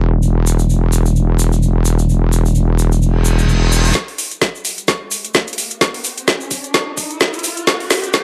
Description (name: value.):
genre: bass house.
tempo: 129 BPM.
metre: 4/4.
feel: swing 56% on 16ths.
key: unclear.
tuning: A4 = 441 Hz.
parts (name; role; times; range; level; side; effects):
wobble bass; bass; 0.0-3.9 s; E1; -15 LUFS; equal; chorus, tube saturation, sidechain pumping.
tube shaker; percussion; 0.2-8.2 s; none; -28 LUFS; equal; none.
reverse cymbal and riser; sound effects; 3.2-8.2 s; none; -26 LUFS; equal; none.
electronic kick drum; drums; 4.0-8.2 s; none; -26 LUFS; equal; overdrive, high-pass filter on kick.
garage drum kit; drums; 4.0-8.2 s; hi-hat, snare drum; -18 LUFS; equal; overdrive.
room: light reverb.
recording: high-pass filter.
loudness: -16 LUFS.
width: mono.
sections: 0.0-4.0 A section; 4.0-8.2 B section.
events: reverse cymbal 3.2-4.0; build-up 4.0-8.2; drum fill 4.0-8.2; riser 4.0-8.2.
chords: none.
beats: | 0.23 0.69 1.16 1.63 | 2.09 2.56 3.02 3.49 | 3.95 4.42 4.88 5.35 | 5.81 6.28 6.74 7.21 | 7.67 8.14.